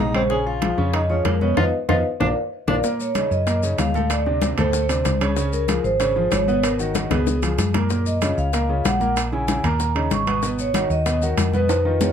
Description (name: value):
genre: Afro-Cuban jazz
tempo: 190 BPM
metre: 4/4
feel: straight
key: Eb minor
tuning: A4 = 442 Hz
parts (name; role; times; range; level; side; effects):
- vibraphone with medium mallets; melody; 0.0-12.1 s; Ab4 to Db6; -24 LUFS; equal; tape echo
- warm tenor saxophone; second line; 0.0-2.8 s; Bb3 to Ab4; -27 LUFS; left 1 dB; none
- warm concert grand piano; accompaniment; 0.0-12.1 s; A2 to Db5; -25 LUFS; equal; none
- hollow-body short-scale fingered electric bass; bass; 0.0-12.1 s; Ab1 to Gb2; -24 LUFS; right 1 dB; none
- bongos; percussion; 0.1-12.1 s; none; -29 LUFS; left 9 dB; none
- congas; percussion; 0.1-12.1 s; none; -27 LUFS; left 3 dB; none
- timbales; percussion; 0.1-12.1 s; none; -29 LUFS; right 7 dB; none
- maracas; percussion; 2.8-12.1 s; none; -34 LUFS; left 7 dB; none
room: light reverb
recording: none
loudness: -18 LUFS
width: side -8 dB against mid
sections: 0.0-2.8 A section; 2.8-12.1 B section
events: band accent 1.6-2.8; drum fill 2.2-2.8, 7.0-7.9, 11.7-12.1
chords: 0.3 Bbm7; 1.6 Ebsus2/F; 2.2 Bb; 2.8 Ebm9; 4.1 D5; 5.4 Dbmaj7; 6.6 Abm9; 7.3 Db7; 7.9 Gbmaj7; 9.2 Bbm7b5; 9.8 Eb5; 10.4 Abm11